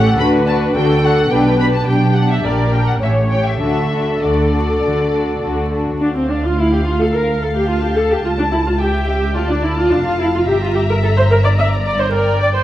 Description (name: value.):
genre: quick classical-period movement for string orchestra.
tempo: 108 BPM.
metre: 4/4.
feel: rubato.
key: D major, D minor from 6.0 s.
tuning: A4 = 441 Hz.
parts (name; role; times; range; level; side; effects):
muted studio violin section; melody; 0.0-12.6 s; D5 to B5; -25 LUFS; left 2 dB; none.
muted studio violin section; second line; 0.0-12.6 s; C#4 to A5; -21 LUFS; left 2 dB; none.
muted studio viola section; accompaniment; 0.0-12.6 s; C4 to E5; -17 LUFS; equal; none.
muted studio cello section; bass; 0.0-12.6 s; C#2 to D3; -20 LUFS; right 1 dB; none.
muted studio double bass section; bass; 0.0-12.6 s; F1 to D2; -20 LUFS; right 1 dB; none.
room: wet recital hall reverb, RT60 1.7 s.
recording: vinyl crackle.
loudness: -13 LUFS.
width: side -13 dB against mid.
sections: 0.0-6.0 A section; 6.0-12.6 B section.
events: none.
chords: 0.2 D; 1.3 G/B; 2.4 Gm/Bb; 3.0 A7; 3.6 D; 6.0 Dm; 8.2 A7/C#; 9.4 Dm; 10.5 Gm.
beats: 0.20 0.75 | 1.31 1.87 2.43 3.01 | 3.61 4.23 4.83 5.43 | 6.01 6.58 7.14 7.69 | 8.24 8.80 9.36 9.91 | 10.47 11.02 11.57 12.12.